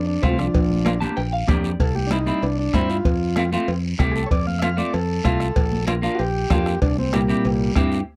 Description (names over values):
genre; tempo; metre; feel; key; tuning
latin, cumbia; 191 BPM; 4/4; straight; F major; A4 = 440 Hz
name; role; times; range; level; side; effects
combo organ; melody; 0.0-7.7 s; Bb2 to F5; -26 LUFS; equal; none
fingered electric bass; bass; 0.0-8.0 s; Bb1 to G2; -26 LUFS; equal; none
semi-hollow electric guitar; accompaniment; 0.2-8.0 s; G3 to A5; -27 LUFS; equal; none
bombo; percussion; 0.2-7.9 s; none; -25 LUFS; equal; none
congas; percussion; 0.2-7.9 s; none; -32 LUFS; equal; none
cowbell and timbales; percussion; 0.2-7.9 s; none; -35 LUFS; equal; none
guiro; percussion; 0.2-8.1 s; none; -41 LUFS; equal; none
room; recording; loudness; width
light reverb; dry, close 1970s-style studio recording; -21 LUFS; mono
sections
0.0-8.2 A section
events
transistor combo organ solo 0.0-8.2; clean electric guitar fill 0.9-1.8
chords
0.0 F; 0.5 Bb; 1.8 C; 3.1 F; 5.6 Bb; 6.8 C7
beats
0.23 | 0.54 0.86 1.17 1.49 | 1.80 2.11 2.43 2.74 | 3.06 3.37 3.68 4.00 | 4.31 4.62 4.94 5.25 | 5.57 5.88 6.19 6.51 | 6.82 7.13 7.45 7.76 | 8.07